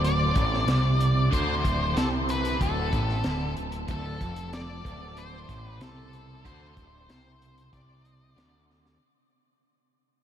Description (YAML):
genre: psychedelic rock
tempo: 94 BPM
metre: 4/4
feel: straight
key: unclear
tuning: A4 = 440 Hz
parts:
  - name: octave-fuzz lead guitar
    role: melody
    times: 0.0-8.6 s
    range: A4 to D5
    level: -31 LUFS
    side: left 1 dB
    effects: distortion, tape echo
  - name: overdriven semi-hollow guitar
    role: riff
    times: 0.0-9.0 s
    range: D2 to D3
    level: -29 LUFS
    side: right 1 dB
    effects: rotary speaker
  - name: growling picked electric bass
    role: bass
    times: 0.0-9.0 s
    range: D1 to D2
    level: -32 LUFS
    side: equal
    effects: overdrive
  - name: crunchy breakbeat drum kit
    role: drums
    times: 0.0-9.0 s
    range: hi-hat, kick drum, snare drum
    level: -31 LUFS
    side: equal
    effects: none
room: moderate huge ambient reverb, RT60 8.3 s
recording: dreamy mix soaked in reverb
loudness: -24 LUFS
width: side -10 dB against mid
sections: 0.0-9.0 A section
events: fade-out 0.0-9.0; drum fill 8.7-9.0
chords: 0.0 D7(no3)